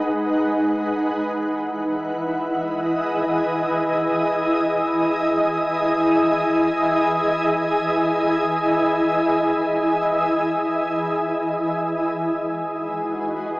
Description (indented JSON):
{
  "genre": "ambient",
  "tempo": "free time",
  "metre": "none",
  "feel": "none",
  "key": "unclear",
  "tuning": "A4 = 440 Hz",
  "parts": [
    { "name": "shimmering ambient pad", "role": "solo", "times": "0.0-13.6 s", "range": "E3 to F#5", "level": "-18 LUFS", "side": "equal", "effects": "chorus, built-in reverb, diffuse ambient delay" }
  ],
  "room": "wet cathedral reverb, RT60 7.5 s",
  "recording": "small speaker sound",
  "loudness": "-18 LUFS",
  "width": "side -23 dB against mid",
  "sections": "0.0-12.2 A section; 12.2-13.6 B section",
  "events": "none",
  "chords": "0.0 G#m7; 1.1 Emaj7; 12.2 G#m7"
}